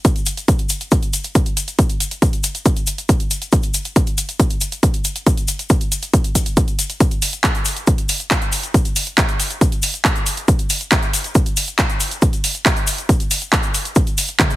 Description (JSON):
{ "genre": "trance", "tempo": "138 BPM", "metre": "4/4", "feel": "straight", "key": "none", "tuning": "none", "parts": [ { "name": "electronic kick drum", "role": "drums", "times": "0.0-14.5 s", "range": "none", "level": "-16 LUFS", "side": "equal", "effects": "none" }, { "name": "techno drum kit", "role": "drums", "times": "0.0-14.6 s", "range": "handclaps, hi-hat, toms", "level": "-20 LUFS", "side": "right 1 dB", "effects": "none" }, { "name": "tube shaker", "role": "percussion", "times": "0.1-14.6 s", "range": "none", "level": "-25 LUFS", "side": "left 5 dB", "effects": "none" } ], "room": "little or no reverb", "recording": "heavily compressed radio sound", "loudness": "-15 LUFS", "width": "side -16 dB against mid", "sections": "0.0-14.6 A section", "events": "none", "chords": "none" }